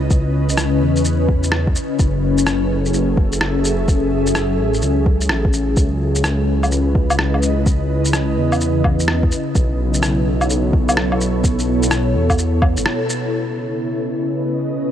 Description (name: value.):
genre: future garage.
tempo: 127 BPM.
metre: 4/4.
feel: swing 64% on 16ths.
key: C# minor.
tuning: A4 = 440 Hz.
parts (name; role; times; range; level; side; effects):
ethereal airy pad; sustained chords; 0.0-14.9 s; B2 to E5; -19 LUFS; left 1 dB; ensemble chorus, built-in reverb, sidechain pumping.
dark detuned saw bass; bass; 0.0-12.9 s; F#1 to E2; -19 LUFS; equal; transformer saturation, sidechain pumping.
electronic kick drum; drums; 0.1-12.7 s; none; -17 LUFS; equal; none.
electronic shaker, rim click and woodblock; drums; 0.1-13.2 s; none; -22 LUFS; equal; overdrive.
room: light reverb, digital ambience.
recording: dry, gritty hardware recording.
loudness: -15 LUFS.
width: side -10 dB against mid.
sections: 0.0-13.3 A section; 13.3-14.9 B section.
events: break 12.9-13.3; band accent 12.9.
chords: 0.0 C#m9; 2.0 F#m7; 5.8 C#m9; 9.6 B7sus4; 13.3 C#m9.